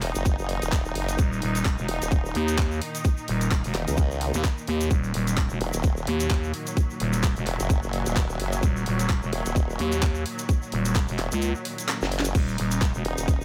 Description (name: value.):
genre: bass house.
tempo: 129 BPM.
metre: 4/4.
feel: swing 57% on 16ths.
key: Eb phrygian.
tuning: A4 = 440 Hz.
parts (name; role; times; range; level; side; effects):
rich symphonic string section; sustained chords; 0.0-13.4 s; Bb2 to Eb4; -35 LUFS; equal; sidechain pumping.
formant-sweep wobble bass; bass; 0.0-13.4 s; Eb1 to Db2; -30 LUFS; equal; chorus, sidechain pumping.
garage drum kit; drums; 0.0-13.4 s; crash cymbal, handclaps, hi-hat, snare drum; -35 LUFS; equal; overdrive.
downlifter; sound effects; 0.0-1.2 s; none; barely audible; none; none.
tube shaker; percussion; 0.2-13.4 s; none; -40 LUFS; equal; none.
electronic kick drum; drums; 0.3-13.4 s; none; -25 LUFS; equal; overdrive.
growling FM bass; bass; 1.2-13.0 s; Eb1 to Eb2; -28 LUFS; equal; overdrive, sidechain pumping.
room: little or no reverb.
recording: none.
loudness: -25 LUFS.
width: mono.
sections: 0.0-13.4 A section.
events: kick drops out 11.4-12.3; drum fill 11.9-12.3.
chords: 0.0 Eb5.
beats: 0.26 0.72 | 1.19 1.65 2.12 2.58 | 3.05 3.51 3.98 4.44 | 4.91 5.37 5.84 6.30 | 6.77 7.23 7.70 8.16 | 8.63 9.09 9.56 10.02 | 10.49 10.95 11.42 11.88 | 12.35 12.81 13.28.